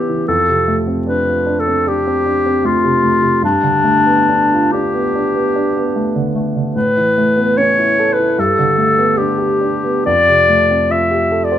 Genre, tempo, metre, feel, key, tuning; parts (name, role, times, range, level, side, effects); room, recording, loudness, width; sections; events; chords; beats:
classical, impressionist duo for clarinet and grand piano; 74 BPM; 4/4; uneven beats, rubato; A4 = 440 Hz
clear clarinet; melody; 0.0-11.6 s; D4 to E5; -14 LUFS; left 2 dB
warm concert grand piano; accompaniment; 0.0-11.6 s; F2 to C5; -17 LUFS; right 2 dB
moderate large studio reverb, RT60 1.1 s; minimal, uncompressed stereo recording; -12 LUFS; side -10 dB against mid
0.0-11.6 A section
0.3 F6; 3.4 G9; 6.7 Aadd9; 8.4 Gadd9; 10.1 Fadd9
| 0.28 1.07 1.88 2.65 | 3.43 4.29 5.15 5.95 | 6.75 7.57 8.38 9.16 | 10.06 10.90